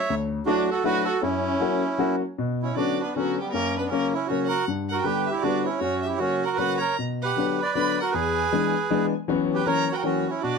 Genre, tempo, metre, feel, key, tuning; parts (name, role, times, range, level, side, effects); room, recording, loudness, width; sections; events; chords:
musette waltz; 157 BPM; 3/4; swing 54% on 8ths, rubato; B harmonic minor; A4 = 440 Hz
bandoneon; melody; 0.0-10.6 s; F#3 to E5; -25 LUFS; right 5 dB
clear violin; second line; 0.0-10.6 s; C#4 to B5; -32 LUFS; right 3 dB
dark upright piano; accompaniment; 0.1-10.6 s; D2 to F#4; -26 LUFS; left 5 dB
moderate studio reverb, RT60 0.6 s; close, detailed microphones; -22 LUFS; side -5 dB against mid
0.0-2.4 A section; 2.4-10.6 B section
0.1 Dadd9; 1.2 F#7; 2.4 Bmadd9; 3.5 F#; 4.7 G; 5.8 F#; 7.0 Bm; 8.1 E7; 9.3 F#7sus4; 9.7 F#7